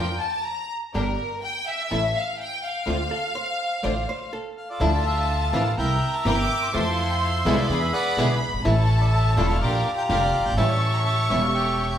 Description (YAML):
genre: tango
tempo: 124 BPM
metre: 4/4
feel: rubato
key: D minor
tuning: A4 = 440 Hz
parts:
  - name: warm studio violin section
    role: second line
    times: 0.0-12.0 s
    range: Bb4 to D6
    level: -28 LUFS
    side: left 2 dB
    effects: none
  - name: flamenco guitar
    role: accompaniment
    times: 0.0-11.4 s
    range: B2 to G4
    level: -28 LUFS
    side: equal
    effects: none
  - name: warm studio string section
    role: stabs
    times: 0.0-12.0 s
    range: C4 to E5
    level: -32 LUFS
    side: equal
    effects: none
  - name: upright bass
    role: bass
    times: 0.0-12.0 s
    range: E1 to F2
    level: -24 LUFS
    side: equal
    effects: none
  - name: archtop guitar, miked and amplified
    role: second line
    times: 3.1-4.8 s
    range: A4 to D5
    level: -34 LUFS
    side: right 2 dB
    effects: none
  - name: bandoneon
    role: melody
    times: 4.6-12.0 s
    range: E4 to C6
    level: -25 LUFS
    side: equal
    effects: none
room: wet stone room reverb, RT60 1.2 s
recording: band playing live in one room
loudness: -21 LUFS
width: side -10 dB against mid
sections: 0.0-4.8 A section; 4.8-12.0 B section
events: violin section solo 0.0-4.8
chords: 0.0 Bb/F; 0.9 Gm; 1.9 A; 2.9 Dm7; 4.8 Dmadd9; 5.8 C7; 6.7 Fmaj7; 7.7 E7; 8.7 A; 9.6 Bb6; 10.6 A7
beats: 0.46 | 0.94 1.43 1.91 2.39 | 2.87 3.36 3.84 4.32 | 4.81 5.29 5.77 6.25 | 6.74 7.22 7.70 8.18 | 8.65 9.13 9.62 10.10 | 10.58 11.06 11.54